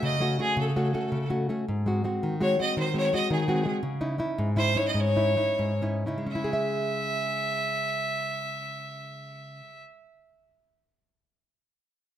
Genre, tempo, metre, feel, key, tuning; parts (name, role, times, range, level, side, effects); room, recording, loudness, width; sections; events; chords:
italian folk; 78-113 BPM (dotted quarters); 6/8; straight; C# harmonic minor; A4 = 438 Hz
bright fiddle; melody; 0.0-9.8 s; G#4 to E5; -28 LUFS; equal
nylon-string guitar; accompaniment; 0.0-10.1 s; G#2 to E5; -27 LUFS; equal
moderate recital hall reverb, RT60 1.4 s; close, detailed microphones; -25 LUFS; side -11 dB against mid
0.0-6.3 A section; 6.3-9.3 B section
slowing down 3.8-6.3
0.0 F#m; 1.7 G#7; 3.8 C#madd9; 6.3 C#m